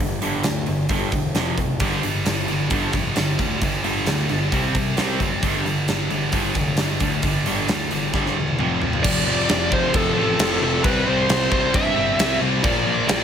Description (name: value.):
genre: hard rock.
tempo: 133 BPM.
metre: 4/4.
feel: straight.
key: unclear.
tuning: A4 = 439 Hz.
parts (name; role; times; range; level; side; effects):
cranked stack guitar; riff; 0.0-9.0 s; F2 to C4; -28 LUFS; right 10 dB; overdrive.
overdriven semi-hollow guitar; riff; 0.0-13.2 s; F2 to C4; -25 LUFS; left 6 dB; none.
fuzz picked electric bass; bass; 0.0-13.2 s; E1 to G2; -27 LUFS; equal; overdrive.
huge arena drum kit; drums; 0.2-13.2 s; crash cymbal, hi-hat, kick drum, snare drum, toms; -24 LUFS; right 1 dB; none.
scooped high-gain guitar; riff; 1.8-13.2 s; F2 to C4; -24 LUFS; right 2 dB; distortion.
bluesy overdriven lead guitar; melody; 9.0-13.2 s; A4 to E5; -22 LUFS; right 2 dB; distortion.
room: light reverb, small room ambience.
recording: none.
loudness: -18 LUFS.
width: side -8 dB against mid.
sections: 0.0-9.0 A section; 9.0-13.2 B section.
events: drum fill 8.1-9.0.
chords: 0.0 G5; 1.4 F5; 1.8 G5; 4.5 C5; 5.4 G5; 8.6 F5; 9.0 F; 10.8 C; 12.6 Bb.